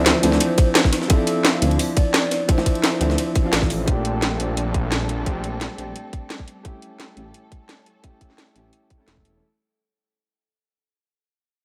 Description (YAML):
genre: liquid drum and bass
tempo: 173 BPM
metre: 4/4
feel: straight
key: D minor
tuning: A4 = 435 Hz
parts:
  - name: hollow clarinet-like synth lead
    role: melody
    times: 0.0-3.7 s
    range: A4 to F5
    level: -30 LUFS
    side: equal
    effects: analog chorus, tape echo
  - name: warm grand piano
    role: accompaniment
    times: 0.0-9.4 s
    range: E3 to A4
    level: -27 LUFS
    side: equal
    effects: delay
  - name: warm studio string section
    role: sustained chords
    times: 0.0-9.4 s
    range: G3 to A4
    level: -37 LUFS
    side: equal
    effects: none
  - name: swelling detuned saw bass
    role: bass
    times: 0.0-9.4 s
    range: E1 to D2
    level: -26 LUFS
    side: equal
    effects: none
  - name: drum and bass drum kit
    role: drums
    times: 0.1-9.3 s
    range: hi-hat, snare drum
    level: -24 LUFS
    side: equal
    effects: none
  - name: jungle sampler-style drum kit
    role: drums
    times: 0.1-3.8 s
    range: hi-hat, ride cymbal, snare drum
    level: -29 LUFS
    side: equal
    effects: high-pass filter on cymbals, high-pass filter on snare, high-pass filter on hats, high-pass filter on room
  - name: bongos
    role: percussion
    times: 0.2-3.1 s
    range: none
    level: -28 LUFS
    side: equal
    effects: none
  - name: electronic kick drum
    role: drums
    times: 0.6-9.2 s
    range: none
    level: -22 LUFS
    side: equal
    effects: none
room: light reverb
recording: none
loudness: -20 LUFS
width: mono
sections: 0.0-9.4 A section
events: fade-out 0.0-9.4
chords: 0.0 Dm9; 3.9 Bbmaj13; 6.6 A7